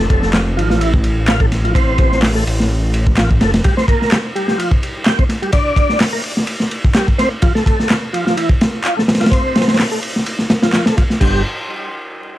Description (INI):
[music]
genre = breakbeat, breaks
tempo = 127 BPM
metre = 4/4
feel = swing 55% on 16ths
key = unclear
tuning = A4 = 440 Hz
[part]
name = tonewheel organ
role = riff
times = 0.0-11.4 s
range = E3 to G4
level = -20 LUFS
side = equal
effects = chorus vibrato, slow rotary speaker, low-pass filter, tape echo
[part]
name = dark detuned saw bass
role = bass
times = 0.0-3.6, 11.2-11.4 s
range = F1 to A1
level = -17 LUFS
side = equal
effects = tube saturation
[part]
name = crunchy breakbeat drum kit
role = drums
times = 0.1-11.3 s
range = crash cymbal, hi-hat, kick drum, ride cymbal, snare drum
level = -15 LUFS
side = equal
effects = none
[part]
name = electronic handclaps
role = drums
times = 0.3-10.8 s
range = none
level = -21 LUFS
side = equal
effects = none
[sound]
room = little or no reverb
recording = vinyl crackle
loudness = -13 LUFS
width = side -14 dB against mid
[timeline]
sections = 0.0-11.2 A section; 11.2-12.4 B section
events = filter sweep on tonewheel organ 0.0-11.2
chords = 0.0 F; 3.6 Gm; 7.4 F; 11.2 N.C.